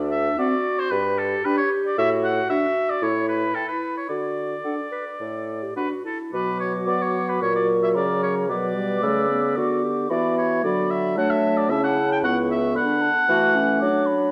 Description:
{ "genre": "quick classical-period movement for wind quintet", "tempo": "112 BPM", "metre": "4/4", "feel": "rubato", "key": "D major, B minor from 6.3 s", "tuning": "A4 = 441 Hz", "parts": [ { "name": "clear clarinet", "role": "accompaniment", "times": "0.0-14.3 s", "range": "C#4 to B4", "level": "-30 LUFS", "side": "equal", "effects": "none" }, { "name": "mellow bassoon", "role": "bass", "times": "0.0-14.3 s", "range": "C#2 to B3", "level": "-27 LUFS", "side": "equal", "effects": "none" }, { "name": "warm oboe", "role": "second line", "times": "0.1-14.0 s", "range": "A4 to G5", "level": "-27 LUFS", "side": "equal", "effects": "none" }, { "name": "mellow hollow silver concert flute", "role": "melody", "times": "0.4-14.3 s", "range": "F#5 to E6", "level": "-33 LUFS", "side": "equal", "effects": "none" }, { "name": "dark French horn", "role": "accompaniment", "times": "0.4-14.3 s", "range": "F#3 to E4", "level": "-31 LUFS", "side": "equal", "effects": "none" } ], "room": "wet recital hall reverb, RT60 1.4 s", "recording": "dark, warm production", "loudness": "-22 LUFS", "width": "mono", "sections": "0.0-6.3 A section; 6.3-14.3 B section", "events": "none", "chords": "0.0 D7; 0.9 G5; 2.0 D/A; 3.0 A5; 4.1 D; 6.3 Bm; 7.4 F#/A#; 8.5 Bm; 10.6 D; 11.7 A/C#; 12.8 D" }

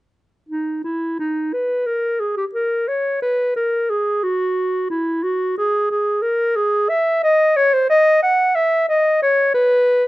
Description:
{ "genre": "classical, baroque-style fantasia for unaccompanied clarinet", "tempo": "90 BPM", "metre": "4/4", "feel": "rubato", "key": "G# minor", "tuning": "A4 = 439 Hz", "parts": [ { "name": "warm clarinet", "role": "solo", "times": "0.5-10.0 s", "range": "D#4 to F#5", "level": "-16 LUFS", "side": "equal", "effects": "none" } ], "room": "light reverb", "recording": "nothing above 10.4 kHz", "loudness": "-16 LUFS", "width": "side -17 dB against mid", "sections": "0.5-10.1 A section", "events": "none", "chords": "none" }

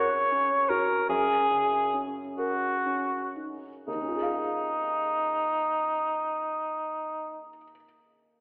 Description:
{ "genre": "cinematic, emotional film score for orchestra", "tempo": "38-53 BPM (dotted quarters)", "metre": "6/8", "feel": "rubato", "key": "Eb minor", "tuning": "A4 = 440 Hz", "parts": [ { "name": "mellow cor anglais", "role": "melody", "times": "0.0-7.5 s", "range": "Eb4 to Db5", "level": "-26 LUFS", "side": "equal", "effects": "none" }, { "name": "felt-muted upright piano", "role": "accompaniment", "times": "0.0-8.4 s", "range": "Eb2 to F5", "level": "-33 LUFS", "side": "equal", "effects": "none" } ], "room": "wet scoring stage reverb, RT60 1.7 s", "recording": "heard from further back in the room, telephone sound", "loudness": "-25 LUFS", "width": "side -34 dB against mid", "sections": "0.0-3.9 A section; 3.9-8.4 B section", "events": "slowing down 0.0-3.9", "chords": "0.0 Gb; 1.1 Ebm7/Gb; 3.9 Eb9sus4" }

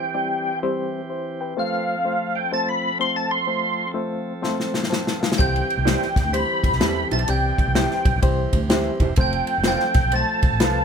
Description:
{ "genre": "uptempo 1960s-style soul", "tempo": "126 BPM", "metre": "4/4", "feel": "swing 64% on 8ths", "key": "unclear", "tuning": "A4 = 440 Hz", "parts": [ { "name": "percussive tonewheel organ", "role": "melody", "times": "0.0-10.8 s", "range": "F5 to C6", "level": "-23 LUFS", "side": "equal", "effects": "overdrive, chorus vibrato, slow rotary speaker" }, { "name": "barky reed electric piano", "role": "accompaniment", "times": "0.0-10.8 s", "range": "G3 to A5", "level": "-27 LUFS", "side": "left 2 dB", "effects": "overdrive, fast tremolo" }, { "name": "bright tonewheel organ", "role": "sustained chords", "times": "0.0-10.8 s", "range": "E3 to A4", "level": "-33 LUFS", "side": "right 1 dB", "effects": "none" }, { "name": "natural country drum kit", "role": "drums", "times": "4.4-10.7 s", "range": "kick drum, ride cymbal, snare drum", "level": "-21 LUFS", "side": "left 1 dB", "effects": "none" }, { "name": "glockenspiel with soft plastic mallets", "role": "second line", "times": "5.4-10.8 s", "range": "G6 to B6", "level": "-32 LUFS", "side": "right 11 dB", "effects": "none" }, { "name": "vintage muted fingered electric bass", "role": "bass", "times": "5.4-10.8 s", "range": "E1 to E2", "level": "-24 LUFS", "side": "equal", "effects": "none" }, { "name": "electric guitar through a small old amp", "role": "stabs", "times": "5.9-10.8 s", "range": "E4 to F5", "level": "-27 LUFS", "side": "right 5 dB", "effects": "none" } ], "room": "light reverb", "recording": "band playing live in one room", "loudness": "-19 LUFS", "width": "side -7 dB against mid", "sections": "0.0-10.8 A section", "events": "drum fill 4.4-5.4", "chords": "0.0 C; 1.6 F; 5.4 C; 9.2 F" }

